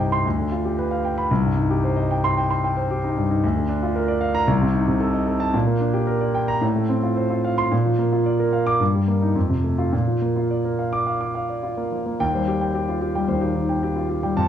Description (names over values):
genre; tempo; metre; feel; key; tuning
classical, virtuoso piano study; 111 BPM; 4/4; rubato; unclear; A4 = 440 Hz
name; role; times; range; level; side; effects
warm concert grand piano; solo; 0.0-14.5 s; C2 to D6; -19 LUFS; equal; none
room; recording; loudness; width
moderate large studio reverb, RT60 0.9 s; studio ambience; -19 LUFS; side -9 dB against mid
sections
0.0-12.2 A section; 12.2-14.5 B section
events
none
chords
0.3 G7/D; 1.3 Cm; 3.4 Bb/D; 4.5 Adim/C; 5.5 Gm/Bb; 6.6 F/A; 7.7 Bb; 8.8 Eb/G; 9.4 F; 9.9 Bb; 12.2 Cm/Eb